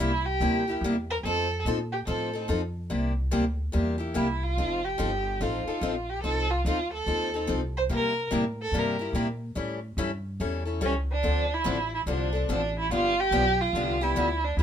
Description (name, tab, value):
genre	acoustic string swing (jazz manouche)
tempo	144 BPM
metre	4/4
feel	swing 63% on 8ths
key	C mixolydian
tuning	A4 = 439 Hz
part	warm violin	melody	0.0-14.6 s	C#4 to C5	-28 LUFS	right 2 dB	none
part	picked steel-string acoustic guitar	accompaniment	0.0-14.6 s	C3 to A4	-29 LUFS	left 2 dB	none
part	upright bass	bass	0.0-14.6 s	F1 to C3	-30 LUFS	equal	none
room	moderate small room reverb, RT60 0.5 s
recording	minimal, uncompressed stereo recording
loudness	-25 LUFS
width	side -9 dB against mid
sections	0.0-14.6 A section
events	none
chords	0.0 C7; 1.2 F7; 2.9 C7; 4.6 F7; 7.9 C7; 9.6 A7; 11.2 Dm7; 12.9 G7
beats	0.00 0.41 0.83 | 1.24 1.66 2.08 2.49 | 2.91 3.33 3.74 4.16 | 4.58 4.99 5.41 5.83 | 6.24 6.66 7.08 7.49 | 7.91 8.33 8.74 9.16 | 9.58 9.99 10.41 10.83 | 11.24 11.66 12.08 12.49 | 12.91 13.33 13.74 14.16 | 14.58